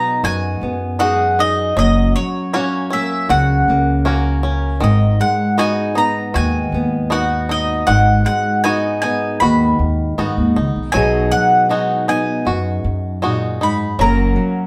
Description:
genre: acoustic folk duo or small band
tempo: 78 BPM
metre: 4/4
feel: straight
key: unclear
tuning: A4 = 439 Hz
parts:
  - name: mandolin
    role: melody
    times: 0.0-14.7 s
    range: C#5 to B5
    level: -20 LUFS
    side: equal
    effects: none
  - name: fingerpicked steel-string acoustic guitar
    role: accompaniment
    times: 0.0-14.7 s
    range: F#2 to A#4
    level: -22 LUFS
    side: equal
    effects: none
  - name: bluegrass banjo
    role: arpeggios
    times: 0.0-14.7 s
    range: D#3 to F#4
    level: -26 LUFS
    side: equal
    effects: none
  - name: upright bass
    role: bass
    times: 0.2-14.3 s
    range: F#1 to F#2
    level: -20 LUFS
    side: equal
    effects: none
room: moderate studio reverb, RT60 0.8 s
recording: band playing live in one room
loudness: -17 LUFS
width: mono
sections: 0.0-14.7 A section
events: none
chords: 0.0 B6; 1.8 F#; 4.8 G#m7; 10.9 B6; 14.0 F#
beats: 0.23 1.00 | 1.76 2.53 3.29 4.06 | 4.82 5.59 6.35 7.12 | 7.88 8.64 9.41 10.17 | 10.94 11.70 12.46 13.22 | 13.99

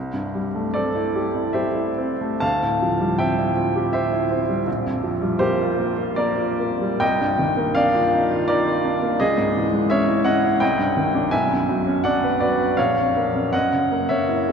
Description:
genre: classical, impressionist solo piano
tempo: 65-86 BPM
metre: 3/4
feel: rubato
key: C mixolydian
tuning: A4 = 440 Hz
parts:
  - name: clear baby grand piano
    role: solo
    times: 0.0-14.5 s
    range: Bb1 to A5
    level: -18 LUFS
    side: equal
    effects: none
room: wet cathedral reverb, RT60 5.2 s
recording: dark, warm production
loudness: -18 LUFS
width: side -6 dB against mid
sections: 0.0-14.5 A section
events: none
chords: 0.0 C6; 2.4 Dm11; 4.7 Bb6; 7.0 Cm11; 9.2 C#madd9; 10.6 Cmadd9; 11.3 Bmadd9; 12.8 A#m; 13.5 F#13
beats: 0.75 1.56 | 2.42 3.20 3.95 | 4.67 5.41 6.18 | 7.02 7.76 8.49 | 9.21 9.91 10.62 | 11.33 12.05 12.78 | 13.54 14.29

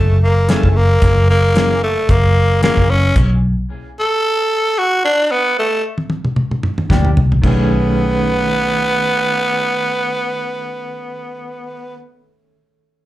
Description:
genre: straight-eighth soul blues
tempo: 112 BPM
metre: 4/4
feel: swing 55% on 16ths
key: B mixolydian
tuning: A4 = 441 Hz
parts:
  - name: growling tenor saxophone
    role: melody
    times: 0.0-12.0 s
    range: A3 to A4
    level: -16 LUFS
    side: equal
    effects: slapback echo
  - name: vintage muted fingered electric bass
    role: bass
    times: 0.0-3.5, 6.9-12.0 s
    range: F#1 to D2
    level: -14 LUFS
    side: equal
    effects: none
  - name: mellow electric guitar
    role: stabs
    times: 0.5-2.8, 6.9-12.0 s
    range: D#3 to G#4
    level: -22 LUFS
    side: left 1 dB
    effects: tremolo, slapback echo, digital delay
  - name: damped 70s drum kit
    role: drums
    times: 0.5-7.6 s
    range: crash cymbal, hi-hat, kick drum, snare drum, toms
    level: -16 LUFS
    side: equal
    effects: none
room: little or no reverb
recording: live gig heard through the venue's PA, club reverb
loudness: -13 LUFS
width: side -15 dB against mid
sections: 0.0-7.4 A section; 7.4-11.7 B section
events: stop 3.2-6.9; drum fill 5.3-7.4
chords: 0.0 F#9; 3.2 B7(no3); 6.9 C9; 7.4 B13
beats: 0.49 | 1.02 1.56 2.09 2.62 | 3.16 3.69 4.23 4.76 | 5.29 5.83 6.36 6.90 | 7.43 7.97 8.50 9.04 | 9.57 10.11 10.64 11.18

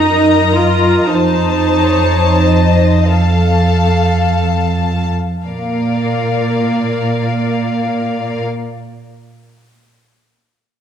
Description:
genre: classical, slow romantic movement for string orchestra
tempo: 23-38 BPM (dotted quarters)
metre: 12/8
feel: rubato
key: unclear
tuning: A4 = 440 Hz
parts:
  - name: rich studio violin section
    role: melody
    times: 0.0-8.4 s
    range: F5 to Bb5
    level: -22 LUFS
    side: left 7 dB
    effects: none
  - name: dark studio violin section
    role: second line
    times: 0.0-8.4 s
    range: A4 to F5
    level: -18 LUFS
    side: left 4 dB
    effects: none
  - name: rich studio viola section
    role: accompaniment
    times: 0.0-8.4 s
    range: Bb3 to F4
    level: -16 LUFS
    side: right 2 dB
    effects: none
  - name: dark studio cello section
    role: bass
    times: 0.0-8.4 s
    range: F2 to Bb2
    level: -15 LUFS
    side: right 2 dB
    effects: none
room: moderate concert hall reverb, RT60 1.8 s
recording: dark, warm production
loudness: -12 LUFS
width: side -8 dB against mid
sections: 0.0-5.5 A section; 5.5-10.8 B section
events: slowing down 0.0-5.5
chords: 0.0 Ebm; 1.1 F7; 5.5 Bb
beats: 1.10 3.08 | 5.46 7.68

